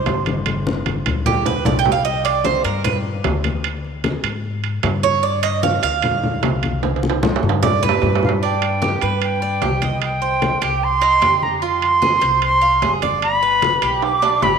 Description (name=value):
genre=latin, Cuban son and guajira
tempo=151 BPM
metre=4/4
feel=straight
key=C harmonic minor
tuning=A4 = 440 Hz
part: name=Cuban tres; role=arpeggios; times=0.0-14.6 s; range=D4 to G5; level=-21 LUFS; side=right 7 dB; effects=none
part: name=upright bass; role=bass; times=0.0-14.6 s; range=G1 to Ab2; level=-24 LUFS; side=left 2 dB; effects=none
part: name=congas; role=percussion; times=0.1-14.6 s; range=none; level=-23 LUFS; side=left 3 dB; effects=none
part: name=timbales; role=percussion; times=0.1-14.5 s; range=none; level=-25 LUFS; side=right 11 dB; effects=none
part: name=jazz flute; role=melody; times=8.2-14.6 s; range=F5 to D6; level=-17 LUFS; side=right 1 dB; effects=none
room=moderate plate reverb, RT60 3.5 s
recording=1960s-style stereo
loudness=-16 LUFS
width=side -6 dB against mid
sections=0.0-8.4 A section; 8.4-14.6 B section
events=Cuban tres solo 0.0-8.4; drum fill 0.5-2.1, 6.8-8.4, 14.0-14.6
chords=0.5 G5; 2.1 C5; 3.6 Db5; 5.2 G5; 6.8 C5; 8.4 G; 10.0 Cm; 11.6 Fm; 13.2 G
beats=0.07 | 0.46 0.86 1.26 1.66 | 2.05 2.45 2.85 3.25 | 3.64 4.04 4.44 4.84 | 5.24 5.63 6.03 6.43 | 6.83 7.23 7.62 8.02 | 8.42 8.82 9.22 9.62 | 10.02 10.42 10.82 11.22 | 11.62 12.02 12.42 12.82 | 13.22 13.62 14.02 14.42